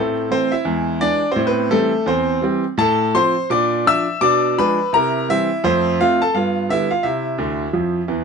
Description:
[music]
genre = jazz, stride piano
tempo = 170 BPM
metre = 4/4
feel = swing 60% on 8ths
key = F major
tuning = A4 = 442 Hz
[part]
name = clear grand piano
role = solo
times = 0.0-8.2 s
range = D2 to E6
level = -16 LUFS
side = equal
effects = none
[sound]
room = light reverb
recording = nothing above 10.7 kHz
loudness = -16 LUFS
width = side -5 dB against mid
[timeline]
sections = 0.0-8.2 A section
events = grand piano fill 7.4-8.2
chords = 0.0 Am; 0.7 E7; 1.4 Am7; 2.8 F/A; 3.5 Bb; 4.2 Bdim7; 4.9 C7; 5.6 F; 6.3 G7; 7.0 C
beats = 0.31 0.67 1.02 | 1.38 1.73 2.08 2.44 | 2.79 3.15 3.50 3.85 | 4.21 4.56 4.92 5.27 | 5.62 5.98 6.33 6.68 | 7.04 7.39 7.75 8.10

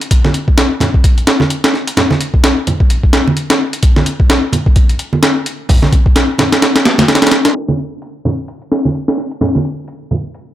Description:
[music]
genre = breakbeat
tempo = 129 BPM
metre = 4/4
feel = swing 58% on 16ths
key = none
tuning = none
[part]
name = breakbeat sampler-style drum kit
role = drums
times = 0.0-10.5 s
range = hi-hat, kick drum, snare drum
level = -11 LUFS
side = equal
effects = low-pass filter on snare, studio reverb, low-pass filter on hats, low-pass filter on kick
[part]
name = congas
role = percussion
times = 0.2-10.2 s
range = none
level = -17 LUFS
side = right 2 dB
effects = none
[sound]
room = light reverb, digital ambience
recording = low-pass filter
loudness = -10 LUFS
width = side -13 dB against mid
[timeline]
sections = 0.0-7.6 A section; 7.6-10.5 B section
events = filter sweep 7.6-10.5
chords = none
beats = | 0.11 0.58 1.04 1.51 | 1.97 2.44 2.90 3.37 | 3.83 4.30 4.76 5.23 | 5.69 6.16 6.62 7.09 | 7.55 8.02 8.48 8.95 | 9.41 9.88 10.35

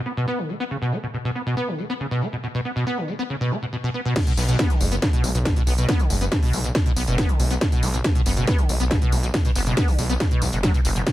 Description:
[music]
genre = driving peak-time techno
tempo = 139 BPM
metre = 4/4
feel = straight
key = B harmonic minor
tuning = A4 = 440 Hz
[part]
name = acid bass, saw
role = riff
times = 0.1-11.1 s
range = B1 to B3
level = -25 LUFS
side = equal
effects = ensemble chorus, sidechain pumping, ping-pong delay
[part]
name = techno drum kit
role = drums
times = 0.1-11.1 s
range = crash cymbal, hi-hat, snare drum, tambourine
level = -27 LUFS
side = equal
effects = sidechain pumping on hats, low-pass filter on hats, sidechain pumping on cymbals, low-pass filter on cymbals, sidechain pumping on perc, low-pass filter on perc, low-pass filter on snare, low-pass filter on room
[part]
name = electronic kick drum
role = drums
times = 4.2-11.1 s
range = none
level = -21 LUFS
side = equal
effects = none
[part]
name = detuned saw bass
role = bass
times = 4.4-11.0 s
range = F#1 to B1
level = -23 LUFS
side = equal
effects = sidechain pumping
[sound]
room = light reverb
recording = none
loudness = -20 LUFS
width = side -15 dB against mid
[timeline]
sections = 0.0-4.2 A section; 4.2-11.1 B section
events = drop 4.2-11.1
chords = 0.0 N.C.; 4.2 B5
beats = 0.28 | 0.71 1.14 1.57 2.00 | 2.43 2.87 3.30 3.73 | 4.16 4.59 5.02 5.45 | 5.89 6.32 6.75 7.18 | 7.61 8.04 8.48 8.91 | 9.34 9.77 10.20 10.63 | 11.07

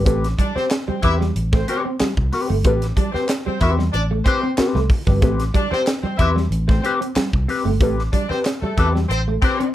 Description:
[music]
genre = funk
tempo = 93 BPM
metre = 4/4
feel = straight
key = A minor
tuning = A4 = 439 Hz
[part]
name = mellow electric guitar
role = accompaniment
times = 0.0-9.6 s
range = C4 to C5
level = -22 LUFS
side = left 4 dB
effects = wah
[part]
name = vintage muted fingered electric bass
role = bass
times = 0.0-9.4 s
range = G1 to E2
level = -21 LUFS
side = equal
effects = none
[part]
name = electric guitar at the edge of break-up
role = riff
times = 0.1-9.7 s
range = G3 to C4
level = -26 LUFS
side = right 3 dB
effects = analog chorus
[part]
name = crisp fusion drum kit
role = drums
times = 0.1-9.7 s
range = hi-hat, kick drum, snare drum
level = -20 LUFS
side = equal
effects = none
[part]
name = warm horn section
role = second line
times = 0.4-9.7 s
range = A3 to E5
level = -26 LUFS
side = equal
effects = none
[part]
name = group handclap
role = percussion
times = 0.7-8.6 s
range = none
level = -32 LUFS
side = left 2 dB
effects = none
[sound]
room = light reverb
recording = none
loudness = -17 LUFS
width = side -13 dB against mid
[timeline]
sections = 0.0-9.7 A section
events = none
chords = 0.0 Am9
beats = | 0.06 0.70 1.35 2.00 | 2.64 3.29 3.93 4.58 | 5.22 5.87 6.51 7.16 | 7.81 8.45 9.10

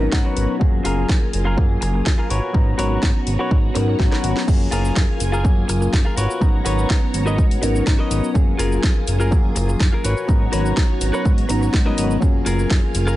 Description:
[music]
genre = filtered disco house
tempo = 124 BPM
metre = 4/4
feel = straight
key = G# dorian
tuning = A4 = 440 Hz
[part]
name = reed electric piano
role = accompaniment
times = 0.0-13.2 s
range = F#3 to A#5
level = -25 LUFS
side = left 2 dB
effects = phaser, sidechain pumping, low-pass filter
[part]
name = string machine, full ensemble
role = sustained chords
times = 0.0-13.2 s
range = B3 to A#5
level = -28 LUFS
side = left 1 dB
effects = ensemble chorus, sidechain pumping, low-pass filter
[part]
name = direct-recorded clean electric guitar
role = riff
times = 0.0-13.2 s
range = E#4 to F#5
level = -26 LUFS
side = left 1 dB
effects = vintage 12-bit sampler grit, sidechain pumping, low-pass filter
[part]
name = fat analog bass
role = bass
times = 0.0-13.2 s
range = F#1 to G#2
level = -22 LUFS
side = equal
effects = sidechain pumping, low-pass filter
[part]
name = electronic kick drum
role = drums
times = 0.1-12.8 s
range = none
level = -17 LUFS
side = equal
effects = overdrive, small room ambience
[part]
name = house drum kit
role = drums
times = 0.1-13.2 s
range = crash cymbal, hi-hat, rim click, shaker, snare drum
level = -27 LUFS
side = equal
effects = overdrive, sidechain pumping on hats, small room ambience, sidechain pumping on cymbals, sidechain pumping on perc
[part]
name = swell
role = sound effects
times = 3.7-4.5 s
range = none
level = -32 LUFS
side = left 1 dB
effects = none
[sound]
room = digital ambience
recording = nothing above 10.8 kHz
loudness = -16 LUFS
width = side -15 dB against mid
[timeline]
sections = 0.0-13.2 A section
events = clean electric guitar fill 0.0-0.6; swell 3.7-4.5; drum fill 4.0-4.5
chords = 0.0 G#m11; 0.6 F#maj9; 2.3 G#m11; 4.5 F#maj9; 6.2 G#m11; 8.4 F#maj9; 10.0 G#m11; 12.2 F#maj9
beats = 0.12 | 0.61 1.09 1.58 2.06 | 2.54 3.03 3.51 4.00 | 4.48 4.96 5.45 5.93 | 6.42 6.90 7.38 7.87 | 8.35 8.84 9.32 9.80 | 10.29 10.77 11.25 11.74 | 12.22 12.71

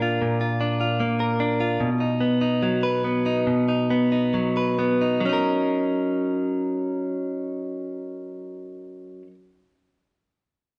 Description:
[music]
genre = pop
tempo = 65-77 BPM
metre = 4/4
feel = straight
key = F# major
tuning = A4 = 440 Hz
[part]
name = direct-recorded clean electric guitar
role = solo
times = 0.0-9.3 s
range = A#2 to B4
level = -24 LUFS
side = equal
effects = spring reverb
[sound]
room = wet large studio reverb, RT60 1.1 s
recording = band playing live in one room, nothing above 10.4 kHz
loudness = -24 LUFS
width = mono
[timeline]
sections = 0.0-5.2 A section; 5.2-8.9 B section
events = slowing down 0.0-5.2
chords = 0.0 A#; 1.8 B; 5.2 F#6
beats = 0.21 1.00 | 1.81 2.63 3.47 4.34 | 5.24 6.16 7.08 8.00

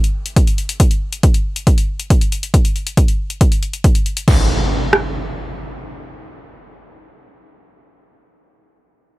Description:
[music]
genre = uplifting trance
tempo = 138 BPM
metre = 4/4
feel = straight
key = none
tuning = none
[part]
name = punchy analog drum machine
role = drums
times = 0.0-4.4 s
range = crash cymbal, hi-hat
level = -25 LUFS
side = left 4 dB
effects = none
[part]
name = punchy analog drum machine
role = drums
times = 0.4-5.0 s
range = kick drum, rim click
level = -13 LUFS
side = equal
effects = none
[part]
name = impact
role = sound effects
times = 4.3-7.3 s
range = none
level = -21 LUFS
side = equal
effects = none
[sound]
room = little or no reverb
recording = none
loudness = -13 LUFS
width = side -19 dB against mid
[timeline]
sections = 0.0-4.3 A section; 4.3-7.8 B section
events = none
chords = none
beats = 0.36 | 0.80 1.23 1.67 2.10 | 2.54 2.97 3.41 3.84 | 4.28 4.71 5.15 5.58 | 6.02 6.45 6.89 7.32

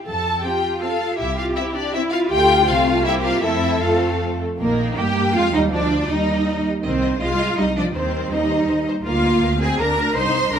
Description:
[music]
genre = quick classical-period movement for string orchestra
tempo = 161 BPM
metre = 3/4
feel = straight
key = F major, Eb major from 4.6 s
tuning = A4 = 441 Hz
[part]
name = warm symphonic violin section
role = melody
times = 0.1-10.6 s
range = Bb3 to A5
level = -24 LUFS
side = left 3 dB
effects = none
[part]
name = warm symphonic viola section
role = accompaniment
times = 0.1-10.6 s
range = Eb3 to A4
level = -23 LUFS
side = right 1 dB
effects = none
[part]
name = rich symphonic double bass section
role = bass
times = 0.1-10.6 s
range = Bb1 to G2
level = -25 LUFS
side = right 2 dB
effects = none
[part]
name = warm symphonic violin section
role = second line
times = 0.4-10.6 s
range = A3 to C6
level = -25 LUFS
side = left 2 dB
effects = none
[part]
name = warm symphonic cello section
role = bass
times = 0.4-10.6 s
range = Bb3 to C5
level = -23 LUFS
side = right 1 dB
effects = none
[sound]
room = moderate recital hall reverb, RT60 1.7 s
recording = none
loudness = -17 LUFS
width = side -8 dB against mid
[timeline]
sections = 0.0-4.6 A section; 4.6-10.6 B section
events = none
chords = 0.1 F; 1.2 C; 2.3 Dm; 2.7 F/C; 3.1 C7; 3.4 F; 4.6 Eb/Bb; 5.7 Eb; 6.8 Cm; 7.9 Cm/Eb; 9.1 Bb/D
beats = | 0.07 0.45 0.83 | 1.20 1.57 1.94 | 2.31 2.68 3.05 | 3.44 3.83 4.21 | 4.60 4.98 5.36 | 5.73 6.10 6.47 | 6.84 7.21 7.58 | 7.95 8.32 8.68 | 9.05 9.42 9.79 | 10.16 10.53

